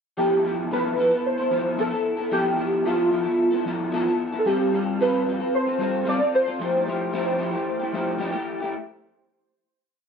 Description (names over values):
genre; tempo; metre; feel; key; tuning
indie pop; 112 BPM; 4/4; straight; F lydian; A4 = 440 Hz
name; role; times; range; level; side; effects
warbly lo-fi synth keys; melody; 0.2-8.2 s; F4 to D5; -23 LUFS; right 1 dB; ensemble chorus, plate reverb
electric guitar through a small old amp; accompaniment; 0.2-8.8 s; F3 to A4; -26 LUFS; left 2 dB; analog chorus, vibrato effect, plate reverb
room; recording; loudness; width
wet studio reverb, RT60 0.6 s; none; -21 LUFS; side -6 dB against mid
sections
0.2-8.7 A section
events
none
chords
0.2 Fmaj9#11; 4.5 G9sus4; 6.6 Fmaj9